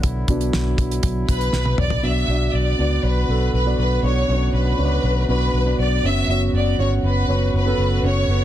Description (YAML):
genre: piano-driven pop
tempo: 120 BPM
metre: 4/4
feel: straight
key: B minor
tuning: A4 = 440 Hz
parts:
  - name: dark grand piano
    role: accompaniment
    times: 0.0-8.4 s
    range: C#3 to D5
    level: -24 LUFS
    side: right 2 dB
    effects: none
  - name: mellow brass ensemble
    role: sustained chords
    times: 0.0-8.4 s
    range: C#3 to F#4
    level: -33 LUFS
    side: left 1 dB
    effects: none
  - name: vintage muted fingered electric bass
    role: bass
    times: 0.0-8.4 s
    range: F#1 to C#2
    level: -20 LUFS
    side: equal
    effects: none
  - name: damped 70s drum kit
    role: drums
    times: 0.0-2.0 s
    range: hi-hat, kick drum, snare drum, toms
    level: -22 LUFS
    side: equal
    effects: none
  - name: rich studio violin section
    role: melody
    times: 1.3-8.4 s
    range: B4 to E5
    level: -23 LUFS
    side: left 1 dB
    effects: none
room: studio ambience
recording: dense, heavily limited modern master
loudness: -17 LUFS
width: side -12 dB against mid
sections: 0.0-2.0 A section; 2.0-8.4 B section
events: grand piano solo 0.0-2.0; drum fill 1.5-2.0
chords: 0.0 Bm; 6.0 F#sus4